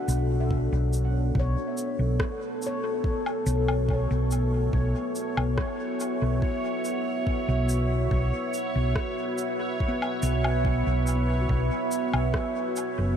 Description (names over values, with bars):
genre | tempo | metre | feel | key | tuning
ambient dub | 71 BPM | 4/4 | straight | unclear | A4 = 440 Hz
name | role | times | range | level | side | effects
deep dark ambient pad | sustained chords | 0.0-13.2 s | B3 to E5 | -29 LUFS | right 1 dB | chorus, built-in reverb
handpan | arpeggios | 0.0-13.2 s | B3 to E5 | -37 LUFS | left 2 dB | tape echo
hollow-body short-scale fingered electric bass | bass | 0.1-13.2 s | F#1 to B1 | -25 LUFS | equal | none
electronic cabasa, rim click and woodblock | drums | 0.1-12.9 s | none | -37 LUFS | left 2 dB | dub echo
electronic kick drum | drums | 0.5-12.5 s | none | -28 LUFS | equal | none
bubbling stepped-filter texture | texture | 0.5-13.2 s | C#5 | -36 LUFS | left 1 dB | chorus, built-in reverb
room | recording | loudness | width
moderate huge ambient reverb, RT60 7.2 s | dreamy mix soaked in reverb | -24 LUFS | side -8 dB against mid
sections
0.0-13.2 A section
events
none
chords
0.0 Bm11; 0.5 F#m7/B